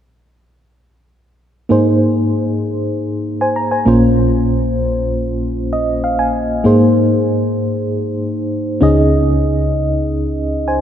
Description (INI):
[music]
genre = pop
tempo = 97 BPM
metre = 4/4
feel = straight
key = Ab major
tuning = A4 = 440 Hz
[part]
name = mellow FM electric piano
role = accompaniment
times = 1.7-10.8 s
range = Bb1 to Bb5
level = -13 LUFS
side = equal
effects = chorus, tremolo
[sound]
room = wet lush hall reverb, RT60 3.0 s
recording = dark, warm production, faint mains hum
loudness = -13 LUFS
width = side -10 dB against mid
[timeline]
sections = 1.7-10.8 A section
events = FM electric piano fill 5.4-6.7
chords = 1.7 Abadd9; 3.9 Bbmadd9; 6.7 Abadd9; 8.8 Dbsus2